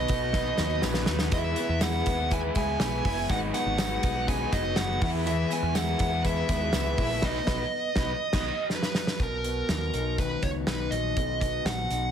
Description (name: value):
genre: jangly indie pop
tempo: 122 BPM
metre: 4/4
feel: straight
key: B major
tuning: A4 = 439 Hz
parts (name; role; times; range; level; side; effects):
- dark smooth lead guitar; melody; 0.0-12.1 s; A#4 to G#5; -30 LUFS; right 2 dB; overdrive
- biting overdriven guitar; accompaniment; 0.0-8.5 s; G#2 to E4; -35 LUFS; right 2 dB; none
- combo organ; accompaniment; 0.0-8.5 s; B3 to B5; -36 LUFS; left 6 dB; none
- electric guitar through a small old amp; arpeggios; 0.0-12.1 s; G#2 to E4; -33 LUFS; left 3 dB; none
- deep dub picked electric bass; bass; 0.0-12.1 s; F#1 to E2; -31 LUFS; equal; none
- loose indie drum kit; drums; 0.1-12.0 s; crash cymbal, hi-hat, kick drum, snare drum; -30 LUFS; right 1 dB; none
- tambourine; percussion; 0.1-7.1 s; none; -46 LUFS; right 8 dB; none
room: moderate club reverb, RT60 0.8 s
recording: heavily compressed radio sound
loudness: -25 LUFS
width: side -8 dB against mid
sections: 0.0-9.2 A section; 9.2-12.1 B section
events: drum fill 0.3-1.3, 8.7-9.2; transistor combo organ fill 0.3-1.3; band accent 7.2-9.2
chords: 0.0 B; 1.3 E; 3.3 G#m7; 5.0 E; 7.2 B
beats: 0.34 0.84 | 1.33 1.82 2.31 2.80 | 3.29 3.79 4.28 4.77 | 5.26 5.75 6.24 6.74 | 7.23 7.72 8.21 8.70 | 9.20 9.69 10.18 10.67 | 11.16 11.66